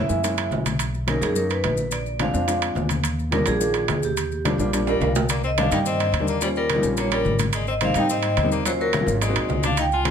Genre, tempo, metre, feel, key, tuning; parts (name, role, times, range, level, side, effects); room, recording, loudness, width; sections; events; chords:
Afro-Cuban jazz; 214 BPM; 4/4; straight; Eb major, C minor from 5.3 s; A4 = 440 Hz
vibraphone with medium hard mallets; melody; 0.0-10.1 s; G4 to Ab5; -25 LUFS; right 1 dB; tape echo
clear concert grand piano; accompaniment; 0.0-10.1 s; Eb3 to G5; -26 LUFS; left 1 dB
upright bass; bass; 0.0-10.1 s; Ab1 to Ab2; -27 LUFS; equal
congas; percussion; 0.1-10.1 s; -29 LUFS; left 2 dB
maracas; percussion; 0.1-10.1 s; -34 LUFS; left 8 dB
timbales; percussion; 0.2-10.1 s; -28 LUFS; right 8 dB
edgy tenor saxophone; second line; 4.9-10.1 s; Gb3 to F4; -28 LUFS; left 7 dB
moderate club reverb, RT60 0.8 s; -20 LUFS; side -7 dB against mid
0.0-5.3 A section; 5.3-10.1 B section
grand piano fill 4.7-5.3; drum fill 4.9-5.3
0.0 Gb7; 0.8 Bmaj7; 1.9 Bb7; 3.0 Ebmaj7; 5.3 Cm9; 6.4 Eb7; 7.5 Abmaj7; 8.7 Ebm7; 9.2 Ab7